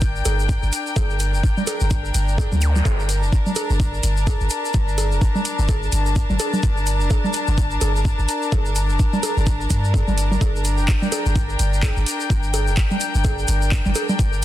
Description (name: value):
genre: minimal techno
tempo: 127 BPM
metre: 4/4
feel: swing 59% on 16ths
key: G minor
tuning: A4 = 441 Hz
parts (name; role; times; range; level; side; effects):
- punchy sub bass; bass; 0.0-14.4 s; F1 to G2; -20 LUFS; equal; sidechain pumping
- electronic kick drum; drums; 0.0-14.3 s; none; -20 LUFS; equal; overdrive
- tube shaker; percussion; 0.0-14.4 s; none; -32 LUFS; left 4 dB; none
- warm studio string section; texture; 0.0-14.4 s; D4 to A5; -25 LUFS; left 2 dB; sidechain pumping
- garage drum kit; drums; 0.3-14.4 s; handclaps, hi-hat; -28 LUFS; right 3 dB; overdrive
- bongos and congas; percussion; 0.3-14.2 s; none; -27 LUFS; right 2 dB; ping-pong delay
- zap; sound effects; 2.6-2.8 s; none; -32 LUFS; equal; none
room: little or no reverb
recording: dense, heavily limited modern master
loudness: -18 LUFS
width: side -14 dB against mid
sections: 0.0-14.4 A section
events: none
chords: 0.0 Gm